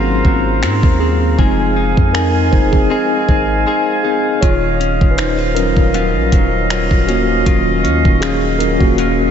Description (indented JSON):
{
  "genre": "contemporary R&B",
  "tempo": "79 BPM",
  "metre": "4/4",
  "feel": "swing 54% on 16ths",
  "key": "Eb dorian",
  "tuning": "A4 = 440 Hz",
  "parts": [
    { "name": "mellow tine electric piano", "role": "accompaniment", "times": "0.0-9.3 s", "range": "Gb3 to Db5", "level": "-17 LUFS", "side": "equal", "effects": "medium stereo tremolo" },
    { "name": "mellow brass ensemble", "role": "sustained chords", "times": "0.0-9.3 s", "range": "Gb3 to Bb5", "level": "-19 LUFS", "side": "equal", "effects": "none" },
    { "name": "direct-recorded clean electric guitar", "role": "arpeggios", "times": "0.0-9.3 s", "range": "Ab2 to Ab4", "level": "-22 LUFS", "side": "left 8 dB", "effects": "tape echo" },
    { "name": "long sustained 808-style bass", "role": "bass", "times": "0.0-9.3 s", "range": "Eb1 to Ab2", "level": "-18 LUFS", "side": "equal", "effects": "none" },
    { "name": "smooth R&B drum kit", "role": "drums", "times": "0.2-9.2 s", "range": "finger snaps, hi-hat, kick drum", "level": "-16 LUFS", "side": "equal", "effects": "none" }
  ],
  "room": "moderate huge ambient reverb, RT60 5.9 s",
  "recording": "dreamy mix soaked in reverb, nothing above 7.9 kHz",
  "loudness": "-12 LUFS",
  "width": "side -8 dB against mid",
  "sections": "0.0-9.3 A section",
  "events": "break 0.0-4.4; tine electric piano solo 0.0-9.3; drums muted 3.7-4.4",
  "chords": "0.0 Ab13; 1.4 Fm7; 4.4 Ebm9"
}